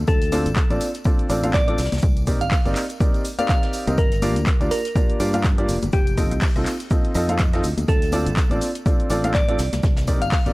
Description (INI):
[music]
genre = piano house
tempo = 123 BPM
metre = 4/4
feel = swing 57% on 16ths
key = unclear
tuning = A4 = 440 Hz
[part]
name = fingered electric bass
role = bass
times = 0.0-10.5 s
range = F1 to G2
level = -24 LUFS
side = equal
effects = sidechain pumping
[part]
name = thumb-piano-like synth pluck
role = melody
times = 0.1-10.3 s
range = G4 to F5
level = -27 LUFS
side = equal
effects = chorus, analog delay
[part]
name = electronic kick drum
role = drums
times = 0.1-10.4 s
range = none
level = -19 LUFS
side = equal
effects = none
[part]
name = jazz brush drum kit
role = drums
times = 0.1-10.5 s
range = hi-hat, shaker, snare drum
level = -39 LUFS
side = left 1 dB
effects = high-pass filter on hats, high-pass filter on snare, high-pass filter on perc, high-pass filter on room
[part]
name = punchy analog drum machine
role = drums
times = 0.1-10.5 s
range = handclaps, hi-hat, shaker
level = -31 LUFS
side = equal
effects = none
[part]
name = tambourine and congas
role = percussion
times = 0.1-10.5 s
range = none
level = -32 LUFS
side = left 3 dB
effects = none
[part]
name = clear upright piano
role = riff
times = 0.3-10.5 s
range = Bb3 to F5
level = -25 LUFS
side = equal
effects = sidechain pumping, analog delay
[sound]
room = small room ambience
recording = dry, gritty hardware recording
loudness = -18 LUFS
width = side -21 dB against mid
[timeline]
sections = 0.0-10.5 A section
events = none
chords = 0.0 Dm7; 1.8 Cm9; 4.0 Gm7; 5.9 F7; 7.6 Dm7; 9.6 Cm9